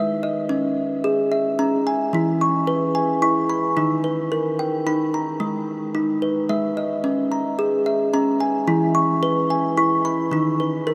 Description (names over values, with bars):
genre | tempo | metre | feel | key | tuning
world meditative, meditative tuned percussion | 73 BPM (dotted quarters) | 6/8 | straight | unclear | A4 = 440 Hz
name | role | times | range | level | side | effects
kalimba | solo | 0.0-10.9 s | Eb3 to Db6 | -21 LUFS | equal | none
room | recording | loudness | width
wet huge ambient reverb, RT60 8.2 s | in a vast, echoing space | -21 LUFS | mono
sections
0.0-10.9 A section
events
none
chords
0.5 Dbm; 2.1 E; 3.8 Eb; 5.4 Abm; 7.0 Dbm; 8.7 E; 10.3 N.C.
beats
| 0.50 1.32 | 2.13 2.95 | 3.77 4.58 | 5.40 6.22 | 7.04 7.86 | 8.68 9.50 | 10.32